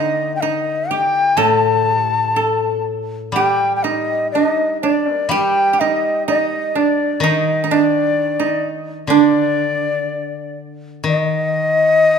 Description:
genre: japanese traditional.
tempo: 62 BPM.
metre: 2/4.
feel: rubato.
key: D miyako bushi.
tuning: A4 = 442 Hz.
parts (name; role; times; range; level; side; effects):
breathy reedy shakuhachi; melody; 0.0-12.2 s; D5 to A5; -17 LUFS; left 3 dB; none.
koto; second line; 0.0-11.5 s; Bb3 to A4; -18 LUFS; right 6 dB; none.
koto; accompaniment; 0.0-12.2 s; A2 to Eb4; -24 LUFS; left 3 dB; none.
room: moderate scoring stage reverb, RT60 1.7 s.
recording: minimal, uncompressed stereo recording.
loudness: -15 LUFS.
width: side -6 dB against mid.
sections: 0.0-11.1 A section; 11.1-12.2 B section.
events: none.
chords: none.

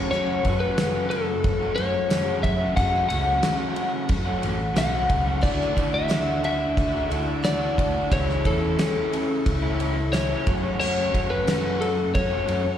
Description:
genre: folk rock and heartland rock.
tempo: 90 BPM.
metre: 4/4.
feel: straight.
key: unclear.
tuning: A4 = 435 Hz.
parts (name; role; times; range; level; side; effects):
electric slide guitar; melody; 0.0-12.8 s; A4 to F#5; -26 LUFS; left 3 dB; slapback echo.
picked twelve-string acoustic guitar; accompaniment; 0.0-12.8 s; F#2 to F#4; -32 LUFS; left 4 dB; lush chorus, slapback echo.
warm upright piano; accompaniment; 0.0-12.2 s; C#4 to E5; -39 LUFS; right 3 dB; none.
tonewheel organ; sustained chords; 0.0-12.8 s; A4 to E6; -38 LUFS; right 1 dB; fast rotary speaker.
raw garage guitar; riff; 0.0-12.7 s; F#2 to F#4; -28 LUFS; right 1 dB; overdrive, slapback echo.
fingered electric bass; bass; 0.0-12.8 s; A1 to F#2; -28 LUFS; right 1 dB; none.
damped 70s drum kit; drums; 0.4-12.6 s; crash cymbal, kick drum, ride cymbal, snare drum; -28 LUFS; right 1 dB; none.
tambourine; percussion; 0.8-11.6 s; none; -42 LUFS; right 5 dB; none.
room: light reverb.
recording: live gig heard through the venue's PA, recital hall reverb.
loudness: -21 LUFS.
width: side -10 dB against mid.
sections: 0.0-12.8 A section.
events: none.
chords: 0.0 F#m; 5.4 Dadd9; 8.1 A/C#; 10.5 F#m.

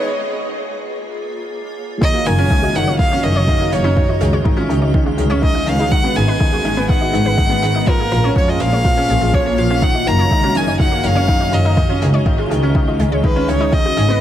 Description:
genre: piano and strings electronica.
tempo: 123 BPM.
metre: 4/4.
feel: straight.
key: F# major.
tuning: A4 = 444 Hz.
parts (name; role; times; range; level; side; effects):
rich violin; melody; 0.0-14.2 s; A#4 to A#5; -20 LUFS; right 1 dB; digital delay, shimmer reverb.
granular cloud pad; sustained chords; 0.0-14.2 s; G#3 to A#5; -25 LUFS; equal; built-in reverb, sidechain pumping, shimmer reverb.
bright upright piano; riff; 0.0-14.2 s; D#3 to E#4; -21 LUFS; left 1 dB; digital delay, shimmer reverb.
wide unison pluck; arpeggios; 2.0-14.1 s; D#4 to G#5; -27 LUFS; left 1 dB; sidechain pumping, digital delay, shimmer reverb.
electronic kick drum; drums; 2.0-13.8 s; none; -16 LUFS; equal; none.
dark symphonic double bass section; bass; 2.3-14.1 s; F#1 to E#2; -18 LUFS; equal; sidechain pumping.
hi-hat; drums; 2.3-14.1 s; none; -35 LUFS; right 5 dB; high-pass filter on hats, high-pass filter on room.
room: light reverb, studio ambience.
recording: high-pass filter.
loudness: -13 LUFS.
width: side -11 dB against mid.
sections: 0.0-2.0 A section; 2.0-14.2 B section.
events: build-up 0.0-2.0; break 0.1-2.0; drop 2.0-14.2.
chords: 0.1 A#m7; 2.0 F#6; 4.0 C#add9; 5.9 G#m7; 7.9 A#m7; 9.8 F#6; 11.8 C#add9.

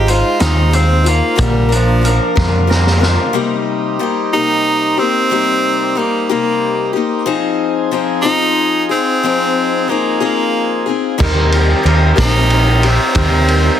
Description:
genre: folk rock and heartland rock.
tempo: 61 BPM (dotted quarters).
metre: 6/8.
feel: straight.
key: C minor.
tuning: A4 = 440 Hz.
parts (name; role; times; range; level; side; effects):
bright tenor saxophone; melody; 0.0-13.8 s; F3 to G4; -16 LUFS; right 1 dB; none.
picked steel-string acoustic guitar; accompaniment; 0.0-13.8 s; Bb2 to C5; -18 LUFS; left 8 dB; none.
pedal harmonium; sustained chords; 0.0-13.8 s; Ab3 to C6; -24 LUFS; right 2 dB; none.
electric guitar through a small old amp; riff; 0.0-3.4, 11.2-13.8 s; Bb2 to C5; -19 LUFS; right 2 dB; none.
hollow-body short-scale picked electric bass; bass; 0.0-3.2, 11.2-13.7 s; Ab1 to F2; -13 LUFS; right 1 dB; none.
vintage drum kit; drums; 0.1-3.2, 11.2-13.6 s; crash cymbal, hi-hat, kick drum, ride cymbal, snare drum; -18 LUFS; right 1 dB; none.
bright reed electric piano; accompaniment; 11.2-13.8 s; Eb4 to C5; -27 LUFS; right 8 dB; none.
room: light reverb, small room ambience.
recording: dense, heavily limited modern master.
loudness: -12 LUFS.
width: side -10 dB against mid.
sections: 0.0-3.3 A section; 3.3-13.8 B section.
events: tenor saxophone solo 0.0-3.3; drum fill 2.4-3.3.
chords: 0.0 Ab6; 1.4 Bb; 3.3 Cm7; 7.3 Fm7; 11.2 Eb6.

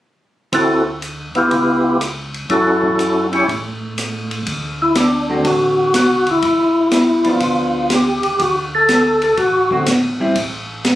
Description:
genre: soul jazz organ trio.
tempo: 122 BPM.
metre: 4/4.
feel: swing 68% on 8ths.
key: D major, D mixolydian from 4.5 s.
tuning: A4 = 443 Hz.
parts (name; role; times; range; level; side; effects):
percussive tonewheel organ; melody; 0.5-9.8 s; B3 to C#5; -14 LUFS; equal; overdrive, chorus vibrato, slow rotary speaker.
mellow tonewheel organ; bass; 0.5-11.0 s; G1 to A2; -30 LUFS; right 1 dB; slow rotary speaker.
open jazz drum kit; drums; 0.5-11.0 s; hi-hat, kick drum, ride cymbal, rim click, snare drum; -20 LUFS; equal; none.
hollow-body jazz guitar; accompaniment; 5.3-10.3 s; D3 to F#4; -19 LUFS; equal; none.
room: light reverb.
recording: recorded on a phone in the room, club reverb.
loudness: -14 LUFS.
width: side -14 dB against mid.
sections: 0.5-4.5 A section; 4.5-11.0 B section.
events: none.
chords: 0.5 D7; 1.5 C#m7b5; 2.5 F#m7; 3.5 N.C.; 4.5 D7; 6.4 G7; 8.4 D7; 10.4 N.C..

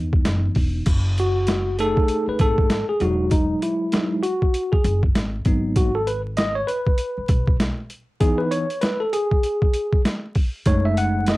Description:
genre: hip hop, jazz-hop.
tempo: 98 BPM.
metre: 4/4.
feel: swing 60% on 16ths.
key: F# dorian.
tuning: A4 = 440 Hz.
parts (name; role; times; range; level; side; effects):
bell-like tine electric piano; accompaniment; 0.0-11.4 s; E3 to F#5; -22 LUFS; equal; fast stereo tremolo, cassette tape.
upright bass; bass; 0.0-11.4 s; E1 to E2; -24 LUFS; equal; none.
boom bap sampler-style drum kit; drums; 0.1-11.4 s; crash cymbal, hi-hat, kick drum, snare drum; -20 LUFS; equal; overdrive.
room: light reverb.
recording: home recording on cassette, vinyl crackle.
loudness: -18 LUFS.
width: side -19 dB against mid.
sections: 0.9-11.4 A section.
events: tine electric piano solo 0.9-11.4.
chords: 0.0 Emaj7sus2; 0.9 F#m69; 3.0 Emaj9; 5.5 G#m7; 8.2 Emaj7; 10.7 F#m69.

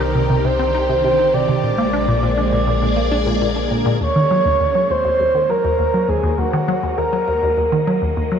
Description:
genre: ambient, sequencer-driven space music.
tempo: 101 BPM.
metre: 4/4.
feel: straight.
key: Eb dorian from 4.0 s.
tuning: A4 = 440 Hz.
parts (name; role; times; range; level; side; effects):
breathy flute-like synth lead; melody; 0.0-8.2 s; Gb4 to D5; -18 LUFS; right 1 dB; lush chorus, tape echo.
phased string machine; sustained chords; 0.0-8.4 s; D3 to Eb5; -23 LUFS; equal; ensemble chorus, phaser.
resonant blip pluck; riff; 0.0-8.4 s; Eb2 to Eb4; -20 LUFS; equal; phaser, tape echo.
round analog bass; bass; 0.0-4.0 s; Bb1 to C2; -24 LUFS; equal; none.
room: wet huge ambient reverb, RT60 8.1 s.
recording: none.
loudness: -15 LUFS.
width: side -7 dB against mid.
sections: 0.0-4.0 A section; 4.0-8.4 B section.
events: none.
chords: 0.0 Cmadd9; 1.6 Bb7; 4.0 Ebm.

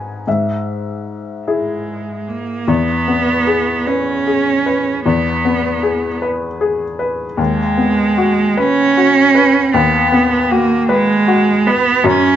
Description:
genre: neoclassical piano and strings.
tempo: 51 BPM (dotted quarters).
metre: 6/8.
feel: rubato.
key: unclear.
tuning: A4 = 441 Hz.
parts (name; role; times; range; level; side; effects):
felt-muted upright piano; accompaniment; 0.0-12.4 s; D#2 to G#5; -16 LUFS; left 3 dB; none.
clear cello; second line; 1.5-12.4 s; G#3 to C#4; -14 LUFS; right 4 dB; none.
room: moderate studio reverb, RT60 0.5 s.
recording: nothing above 7.8 kHz.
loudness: -12 LUFS.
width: side -10 dB against mid.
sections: 0.0-2.7 A section; 2.7-12.4 B section.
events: none.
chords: 0.3 E/G#; 2.7 E; 7.4 B6/D#.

